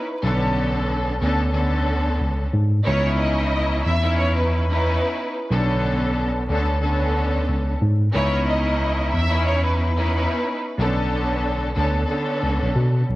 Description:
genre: hip hop, boom-bap hip-hop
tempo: 91 BPM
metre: 4/4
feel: swing 57% on 16ths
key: unclear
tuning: A4 = 441 Hz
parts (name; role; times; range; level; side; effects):
- warm studio violin section; melody; 0.0-10.7 s; B4 to E5; -26 LUFS; equal; high-pass filter, low-pass filter, tape echo
- clear studio string section; accompaniment; 0.0-13.0 s; D3 to A4; -23 LUFS; equal; high-pass filter, low-pass filter
- mellow tine electric piano; bass; 0.2-13.2 s; B1 to B2; -21 LUFS; equal; fast stereo tremolo
room: light reverb, studio reverb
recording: worn, warbling old tape, cassette tape, vinyl crackle, warbly pitch drift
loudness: -19 LUFS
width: side -17 dB against mid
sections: 0.0-13.2 A section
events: none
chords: 0.2 Bm9; 2.9 C#m9; 5.5 Bm9; 8.1 C#m9; 10.8 Bm9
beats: | 0.22 0.88 1.54 2.20 | 2.86 3.52 4.18 4.84 | 5.50 6.16 6.82 7.48 | 8.14 8.79 9.46 10.11 | 10.77 11.43 12.09 12.75

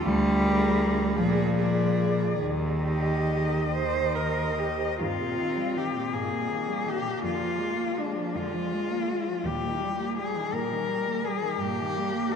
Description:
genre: classical, lyrical piece for cello ensemble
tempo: 45-57 BPM (dotted quarters)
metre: 6/8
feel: rubato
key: Eb major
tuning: A4 = 440 Hz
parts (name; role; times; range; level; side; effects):
- rich cello; accompaniment; 0.0-12.4 s; Eb3 to C4; -29 LUFS; left 2 dB; none
- rich cello; bass; 0.0-12.4 s; D2 to Eb3; -31 LUFS; right 2 dB; none
- rich cello; melody; 0.4-12.4 s; D4 to Eb5; -30 LUFS; left 4 dB; none
- rich cello; second line; 0.4-12.4 s; G2 to C5; -31 LUFS; right 4 dB; none
room: wet cathedral reverb, RT60 5.3 s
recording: in a vast, echoing space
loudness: -25 LUFS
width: side -7 dB against mid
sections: 0.0-5.0 A section; 5.0-12.4 B section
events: none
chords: 0.0 Bb7/D; 1.2 Bb7; 2.4 Eb; 5.0 Eb/G; 7.2 Bb7/F; 9.4 Eb; 11.6 Eb/G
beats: | 0.02 1.16 | 2.40 3.71 | 5.00 6.13 | 7.24 8.35 | 9.45 10.52 | 11.59

